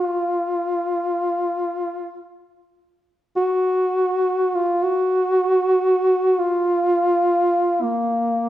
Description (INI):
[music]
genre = caucasian folk, Caucasian lament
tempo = free time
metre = none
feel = none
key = unclear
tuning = A4 = 440 Hz
[part]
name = dark duduk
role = solo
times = 0.0-8.5 s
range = Bb3 to Gb4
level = -18 LUFS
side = equal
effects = none
[sound]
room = moderate recital hall reverb, RT60 1.5 s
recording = recorded in a church or concert hall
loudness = -18 LUFS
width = side -13 dB against mid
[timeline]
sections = 0.0-8.5 A section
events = none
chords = none